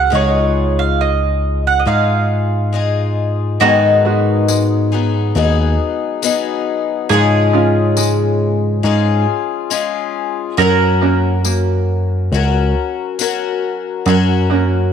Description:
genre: acoustic folk duo or small band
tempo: 69 BPM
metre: 4/4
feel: straight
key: F# major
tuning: A4 = 439 Hz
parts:
  - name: mandolin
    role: second line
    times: 0.0-14.9 s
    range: F#4 to F#5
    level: -18 LUFS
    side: right 8 dB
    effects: none
  - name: picked twelve-string acoustic guitar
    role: accompaniment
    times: 0.0-14.9 s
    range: G#2 to A#4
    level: -18 LUFS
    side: left 9 dB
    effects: none
  - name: bell-like tine electric piano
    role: bass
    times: 0.0-14.9 s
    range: C#2 to G#2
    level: -16 LUFS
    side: equal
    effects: medium stereo tremolo
  - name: open-back banjo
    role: arpeggios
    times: 3.6-14.9 s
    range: D#3 to F#4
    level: -22 LUFS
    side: right 10 dB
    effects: none
  - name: tambourine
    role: percussion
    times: 4.5-13.4 s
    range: none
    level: -23 LUFS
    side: left 14 dB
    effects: none
room: moderate echo chamber reverb, RT60 2.0 s, small room ambience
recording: 1960s-style stereo with parts hard left and right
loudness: -13 LUFS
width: side -8 dB against mid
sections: 0.0-3.6 A section; 3.6-14.9 B section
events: mandolin solo 0.0-3.6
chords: 0.1 C#add9; 3.6 G#m7; 7.1 C#/G#; 10.6 F#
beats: | 0.12 0.99 1.86 2.74 | 3.61 4.48 5.35 6.23 | 7.10 7.97 8.84 9.71 | 10.58 11.45 12.32 13.20 | 14.07

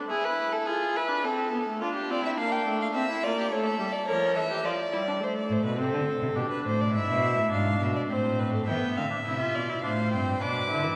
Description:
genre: classical, baroque-style fugue for string quartet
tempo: 105 BPM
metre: 3/4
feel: straight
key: unclear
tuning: A4 = 437 Hz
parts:
  - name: rich viola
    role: accompaniment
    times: 0.0-11.0 s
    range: E3 to F4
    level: -33 LUFS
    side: equal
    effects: none
  - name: rich violin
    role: second line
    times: 0.1-5.1, 8.7-11.0 s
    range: C4 to G5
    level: -33 LUFS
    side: equal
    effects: none
  - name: rich violin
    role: melody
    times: 2.1-11.0 s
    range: G4 to D6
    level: -32 LUFS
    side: equal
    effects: none
  - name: rich cello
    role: bass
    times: 5.5-11.0 s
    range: G2 to E3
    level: -31 LUFS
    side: equal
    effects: none
room: wet church reverb, RT60 3.6 s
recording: recorded in a church or concert hall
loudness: -28 LUFS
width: mono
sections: 0.0-8.7 A section; 8.7-11.0 B section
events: none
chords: 0.1 E7; 1.2 Am/C; 1.8 Dm; 3.0 C; 3.5 A; 4.6 N.C.; 5.2 Am; 6.4 G; 6.9 E7/G#; 8.1 Am; 8.7 C; 9.8 F/A; 10.4 Bm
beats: | 0.10 0.67 1.24 | 1.81 2.38 2.95 | 3.52 4.08 4.64 | 5.22 5.79 6.37 | 6.94 7.52 8.09 | 8.67 9.26 9.84 | 10.41

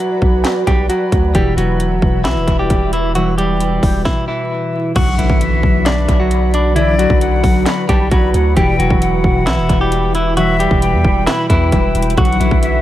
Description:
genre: hip hop, trap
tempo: 133 BPM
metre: 4/4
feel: half-time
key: B minor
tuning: A4 = 440 Hz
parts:
  - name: direct-recorded clean electric guitar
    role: melody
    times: 0.0-12.8 s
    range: E3 to D5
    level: -18 LUFS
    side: equal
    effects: low-pass filter, dub echo
  - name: ethereal airy pad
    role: sustained chords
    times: 0.0-12.8 s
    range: E4 to B5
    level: -24 LUFS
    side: equal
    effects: ensemble chorus, built-in reverb
  - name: trap drum kit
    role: drums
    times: 0.0-12.7 s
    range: crash cymbal, handclaps, hi-hat, kick drum, snare drum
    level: -17 LUFS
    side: equal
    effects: dub echo
  - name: long sustained 808-style bass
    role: bass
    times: 0.2-12.8 s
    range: E1 to E2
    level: -17 LUFS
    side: equal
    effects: none
  - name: concert harp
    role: accompaniment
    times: 1.3-12.8 s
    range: B2 to F#4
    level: -21 LUFS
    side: left 1 dB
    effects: low-pass filter, dub echo
  - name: breathy silver concert flute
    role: second line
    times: 5.0-12.8 s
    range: D5 to B5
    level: -21 LUFS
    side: left 4 dB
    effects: dub echo
  - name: impact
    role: sound effects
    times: 5.0-6.8 s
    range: none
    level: -26 LUFS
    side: equal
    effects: none
room: little or no reverb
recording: echo-heavy mix, vinyl crackle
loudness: -12 LUFS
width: side -13 dB against mid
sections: 0.0-5.0 A section; 5.0-12.8 B section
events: break 0.0-1.3; stop 4.1-5.0; impact 5.0-6.8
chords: 0.0 Bm; 1.3 Em; 5.0 Bm; 8.6 Em; 12.2 Bm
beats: 0.45 0.90 | 1.35 1.80 2.25 2.70 | 3.15 3.60 4.05 4.51 | 4.96 5.41 5.86 6.31 | 6.76 7.21 7.66 8.12 | 8.57 9.02 9.47 9.92 | 10.37 10.82 11.27 11.72 | 12.18 12.63

